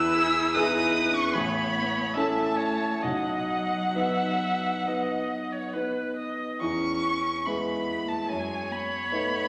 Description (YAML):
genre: classical, slow romantic movement for piano quartet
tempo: 65-76 BPM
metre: 4/4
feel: rubato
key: E major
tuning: A4 = 442 Hz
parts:
  - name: rich violin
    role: melody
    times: 0.0-9.5 s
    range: F#5 to E6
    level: -31 LUFS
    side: equal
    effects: none
  - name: rich cello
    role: second line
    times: 0.0-9.5 s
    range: F#3 to E4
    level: -36 LUFS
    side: equal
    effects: none
  - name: warm grand piano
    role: accompaniment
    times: 0.0-9.5 s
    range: A1 to B4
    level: -31 LUFS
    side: equal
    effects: none
  - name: warm viola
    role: accompaniment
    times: 0.0-9.5 s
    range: G#4 to E5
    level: -35 LUFS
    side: equal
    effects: none
room: wet recital hall reverb, RT60 1.6 s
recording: none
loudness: -27 LUFS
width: mono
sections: 0.0-9.5 A section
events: none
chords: 0.0 E; 1.3 A; 3.0 B; 6.6 E; 8.3 B7/F#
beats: 0.55 1.34 2.15 | 3.03 3.95 4.86 5.73 | 6.61 7.47 8.29 9.11